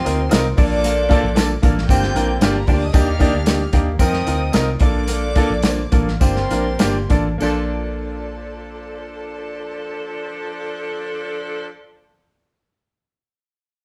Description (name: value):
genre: uptempo 1960s-style soul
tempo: 97-114 BPM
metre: 4/4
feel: straight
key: Bb major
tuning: A4 = 440 Hz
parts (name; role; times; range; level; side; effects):
- clear saxophone section; second line; 0.0-11.7 s; C3 to Bb4; -32 LUFS; equal; none
- warm studio violin section; second line; 0.0-11.7 s; F4 to G6; -31 LUFS; equal; none
- bright grand piano; accompaniment; 0.0-11.7 s; Bb3 to C5; -25 LUFS; equal; none
- vintage hollow-body jazz guitar; riff; 0.0-9.2 s; Bb3 to Eb4; -28 LUFS; equal; none
- vintage muted fingered electric bass; bass; 0.1-11.7 s; G1 to F2; -25 LUFS; equal; none
- warm soul drum kit; drums; 0.1-7.2 s; hi-hat, kick drum, snare drum; -20 LUFS; equal; none
- tambourine; percussion; 0.1-7.7 s; none; -39 LUFS; equal; none
room: light reverb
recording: band playing live in one room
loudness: -18 LUFS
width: mono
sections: 0.0-7.4 A section; 7.4-12.4 B section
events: slowing down 2.9-7.4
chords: 0.0 F7sus4; 0.6 Bbmaj7; 1.9 Gm7; 2.9 Ebmaj7; 4.0 F7sus4; 4.8 Bbmaj7; 6.2 Gm7; 7.4 Bbmaj7